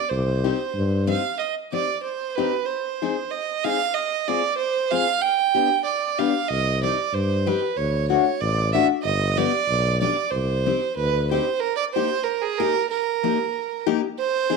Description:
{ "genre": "alpine folk, alpine dance band", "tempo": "94 BPM", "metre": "2/4", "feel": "straight", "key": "C harmonic minor", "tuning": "A4 = 439 Hz", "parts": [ { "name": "dark fiddle", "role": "melody", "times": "0.0-14.6 s", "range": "Ab4 to G5", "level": "-23 LUFS", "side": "right 9 dB", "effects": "none" }, { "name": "mellow tuba", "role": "bass", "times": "0.1-1.2, 6.5-11.4 s", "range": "G1 to G2", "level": "-24 LUFS", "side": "left 2 dB", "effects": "none" }, { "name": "picked steel-string acoustic guitar", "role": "accompaniment", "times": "0.4-14.6 s", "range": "A3 to Ab4", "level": "-24 LUFS", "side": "left 13 dB", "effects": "none" } ], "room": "moderate echo chamber reverb, RT60 1.3 s, small room ambience", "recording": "1960s-style stereo with parts hard left and right", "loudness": "-20 LUFS", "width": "side -4 dB against mid", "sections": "0.0-1.4 A section; 1.4-11.6 A section; 11.6-14.6 B section", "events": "none", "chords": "0.1 Cm; 2.7 Ab/C; 3.9 Fm; 5.2 G; 6.5 Cm; 7.8 D; 9.0 G; 10.3 Cm; 11.6 Eb", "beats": "| 0.11 0.74 | 1.39 2.03 | 2.67 3.31 | 3.94 4.57 | 5.21 5.85 | 6.49 7.13 | 7.77 8.41 | 9.04 9.68 | 10.32 10.96 | 11.61 12.25 | 12.90 13.54 | 14.17" }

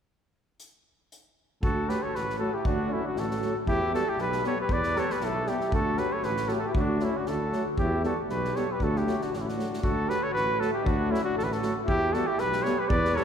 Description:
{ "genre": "balkan folk, Balkan brass band", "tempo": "117 BPM", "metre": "2/4", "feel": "swing 55% on 16ths", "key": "D major", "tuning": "A4 = 440 Hz", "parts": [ { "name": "unplugged drum kit", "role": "percussion", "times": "0.6-13.2 s", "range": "hi-hat, kick drum, snare drum", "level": "-34 LUFS", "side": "equal", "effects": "none" }, { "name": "mellow cornet", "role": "melody", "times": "1.6-13.2 s", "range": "E4 to D5", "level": "-29 LUFS", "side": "equal", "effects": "none" }, { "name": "warm flugelhorn", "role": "second line", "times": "1.6-13.2 s", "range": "C#4 to B4", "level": "-34 LUFS", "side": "left 1 dB", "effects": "none" }, { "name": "mellow tuba", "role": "bass", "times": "1.6-13.2 s", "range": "A1 to E2", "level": "-31 LUFS", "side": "equal", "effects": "none" }, { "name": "clear euphonium", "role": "accompaniment", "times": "1.9-13.2 s", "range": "F#3 to G3", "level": "-35 LUFS", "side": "right 2 dB", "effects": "none" }, { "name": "mellow euphonium", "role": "accompaniment", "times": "1.9-13.2 s", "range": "A3 to B3", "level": "-37 LUFS", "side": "left 2 dB", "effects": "none" } ], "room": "wet church reverb, RT60 3.3 s", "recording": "recorded in a church or concert hall", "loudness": "-25 LUFS", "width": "side -8 dB against mid", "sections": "0.6-1.6 A section; 1.6-9.8 B section; 9.8-13.2 B section", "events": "none", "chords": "0.6 N.C.; 1.6 D; 3.7 Em; 5.7 D; 7.8 Em; 8.8 D; 11.9 Em", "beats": "| 0.59 1.11 | 1.62 2.13 | 2.64 3.16 | 3.67 4.18 | 4.70 5.21 | 5.72 6.24 | 6.75 7.26 | 7.78 8.29 | 8.80 9.31 | 9.83 10.34 | 10.85 11.37 | 11.88 12.39 | 12.90" }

